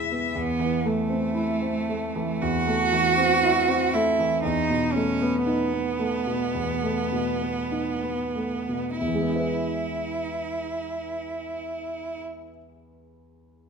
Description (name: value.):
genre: classical, slow romantic movement for piano trio.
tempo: 44-62 BPM.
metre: 4/4.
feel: rubato.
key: E major.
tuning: A4 = 438 Hz.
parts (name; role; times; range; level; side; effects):
warm concert grand piano; accompaniment; 0.0-13.7 s; E2 to B4; -27 LUFS; left 1 dB; none.
clear cello; second line; 0.4-12.2 s; A3 to F#4; -25 LUFS; right 4 dB; none.
room: moderate recital hall reverb, RT60 1.5 s.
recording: minimal, uncompressed stereo recording.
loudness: -23 LUFS.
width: side -6 dB against mid.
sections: 0.4-9.0 A section; 9.0-13.7 B section.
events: slowing down 0.0-9.0.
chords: 0.4 Am/E; 4.4 B7/E; 9.0 E.